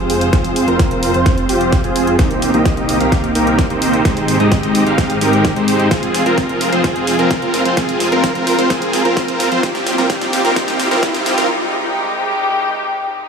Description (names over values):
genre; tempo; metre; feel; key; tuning
EDM, festival progressive house; 129 BPM; 4/4; straight; F minor; A4 = 440 Hz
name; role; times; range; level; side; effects
muted studio string section; sustained chords; 0.0-13.3 s; C3 to C5; -22 LUFS; left 1 dB; sidechain pumping
dense compressed supersaw; riff; 0.0-11.5 s; Ab3 to F5; -15 LUFS; right 1 dB; sidechain pumping, low-pass filter, tape echo
detuned saw bass; bass; 0.0-11.5 s; F1 to Ab2; -26 LUFS; equal; sidechain pumping
big-room dance drum kit; drums; 0.1-11.5 s; hi-hat, snare drum; -25 LUFS; equal; high-pass filter on hats, high-pass filter on snare
electronic kick drum; drums; 0.3-11.1 s; none; -17 LUFS; equal; none
riser; sound effects; 9.3-11.5 s; none; -28 LUFS; equal; none
room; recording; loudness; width
light reverb; high-pass filter, small room ambience; -13 LUFS; side -6 dB against mid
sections
0.0-13.3 A section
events
build-up 0.0-13.3; drum fill 0.0-11.5; filter sweep on supersaw synth 0.0-13.3; filter sweep 0.0-13.3; break 11.5-13.3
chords
0.0 Fm; 2.2 Cm7; 4.1 Abmaj7; 5.9 Fm; 9.6 Cm7; 11.5 Abmaj7